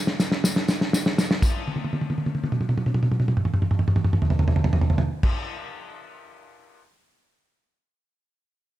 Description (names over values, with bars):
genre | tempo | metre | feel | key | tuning
soul | 122 BPM | 4/4 | straight | none | none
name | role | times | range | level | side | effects
warm soul drum kit | drums | 0.1-6.8 s | crash cymbal, kick drum, snare drum, toms | -21 LUFS | equal | none
tambourine | percussion | 0.2-5.3 s | none | -34 LUFS | left 2 dB | none
room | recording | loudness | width
light reverb, small room ambience | none | -21 LUFS | side -14 dB against mid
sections
0.0-1.4 A section; 1.4-5.4 B section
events
drum fill 0.0-1.4, 1.7-5.2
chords
none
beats
0.44 0.93 | 1.42 1.92 2.41 2.90 | 3.39 3.88 4.37 4.86